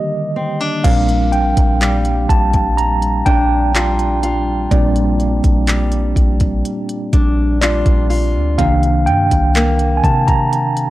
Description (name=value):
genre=contemporary R&B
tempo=62 BPM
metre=4/4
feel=straight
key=Bb major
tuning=A4 = 440 Hz
part: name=mellow tine electric piano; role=accompaniment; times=0.0-10.9 s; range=D3 to Bb5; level=-17 LUFS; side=right 1 dB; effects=fast stereo tremolo
part: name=fingerpicked steel-string acoustic guitar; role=arpeggios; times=0.0-10.9 s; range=Bb2 to G4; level=-22 LUFS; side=left 2 dB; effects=none
part: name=soft 808-style bass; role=bass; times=0.8-10.9 s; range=Bb1 to C3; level=-17 LUFS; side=equal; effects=none
part: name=smooth R&B drum kit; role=drums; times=0.8-10.9 s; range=crash cymbal, handclaps, hi-hat, kick drum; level=-17 LUFS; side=equal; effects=none
room=little or no reverb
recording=dry, gritty hardware recording, cassette tape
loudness=-13 LUFS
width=side -16 dB against mid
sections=0.8-10.9 A section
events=break 0.0-0.8; tine electric piano solo 0.8-10.9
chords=0.0 Ebmaj7; 0.8 Bb6; 8.6 Cm7